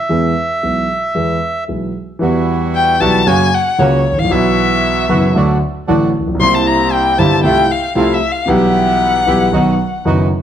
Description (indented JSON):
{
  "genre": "tango",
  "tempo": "115 BPM",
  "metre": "4/4",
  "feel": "rubato",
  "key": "E minor",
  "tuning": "A4 = 441 Hz",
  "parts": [
    { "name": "bandoneon", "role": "melody", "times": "0.0-1.6 s", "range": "E5", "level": "-18 LUFS", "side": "right 2 dB", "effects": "none" },
    { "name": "dark concert grand piano", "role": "accompaniment", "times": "0.1-10.3 s", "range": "F#1 to G#4", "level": "-14 LUFS", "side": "right 1 dB", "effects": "none" },
    { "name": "bandoneon", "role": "stabs", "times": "2.2-10.3 s", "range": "C3 to G4", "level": "-21 LUFS", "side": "right 5 dB", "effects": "none" },
    { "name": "warm violin", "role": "second line", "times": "2.8-10.1 s", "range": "C#5 to C6", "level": "-15 LUFS", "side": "left 4 dB", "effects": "none" }
  ],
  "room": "moderate large studio reverb, RT60 1.2 s",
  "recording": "dark, warm production",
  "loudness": "-11 LUFS",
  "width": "side -9 dB against mid",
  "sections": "0.0-2.2 A section; 2.2-10.4 B section",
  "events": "violin solo 2.2-10.4",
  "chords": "0.1 E; 2.2 Emadd9; 3.3 F#; 4.3 Bsus4; 5.4 D; 6.4 C7; 7.4 Fmaj7/C; 8.5 Em/B; 9.5 B"
}